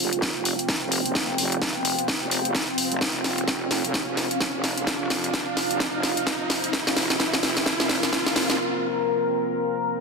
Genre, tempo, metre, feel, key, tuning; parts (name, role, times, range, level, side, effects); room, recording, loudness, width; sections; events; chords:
bass house; 129 BPM; 4/4; swing 59% on 16ths; A4 = 441 Hz
deep dark ambient pad; sustained chords; 0.0-10.0 s; C4 to G5; -27 LUFS; equal; chorus, built-in reverb, sidechain pumping
wobble bass; bass; 0.0-8.6 s; Eb1 to F1; -32 LUFS; equal; chorus, overdrive, sidechain pumping, high-pass filter
riser; sound effects; 0.0-8.6 s; -31 LUFS; right 1 dB
house drum kit; drums; 0.1-8.6 s; hi-hat, snare drum; -24 LUFS; equal
electronic kick drum; drums; 0.2-8.2 s; -33 LUFS; equal; high-pass filter on kick
moderate lush hall reverb, RT60 1.8 s; dense, heavily limited modern master; -22 LUFS; side -4 dB against mid
0.0-10.0 A section
build-up 0.0-10.0; drum fill 0.0-8.6; riser 0.0-8.6; break 8.6-10.0
0.0 F5